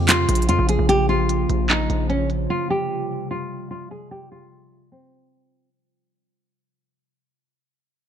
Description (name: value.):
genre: hip hop, trap.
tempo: 149 BPM.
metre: 4/4.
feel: half-time.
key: unclear.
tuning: A4 = 440 Hz.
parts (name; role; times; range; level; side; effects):
nylon-string guitar; melody; 0.0-5.7 s; C4 to Ab4; -23 LUFS; right 1 dB; none.
warbly tape-like pad; sustained chords; 0.0-5.7 s; C3 to F4; -27 LUFS; equal; chorus, built-in reverb.
distorted 808-style bass; bass; 0.0-2.5 s; Bb1 to F2; -21 LUFS; equal; distortion.
trap drum kit; drums; 0.1-2.4 s; handclaps, hi-hat; -21 LUFS; right 1 dB; none.
room: light reverb.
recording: low-pass filter.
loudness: -18 LUFS.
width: side -9 dB against mid.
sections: 0.0-5.7 A section.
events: fade-out 0.0-5.7; filter sweep 0.0-5.7.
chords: 0.0 Bbm; 2.5 Fsus2.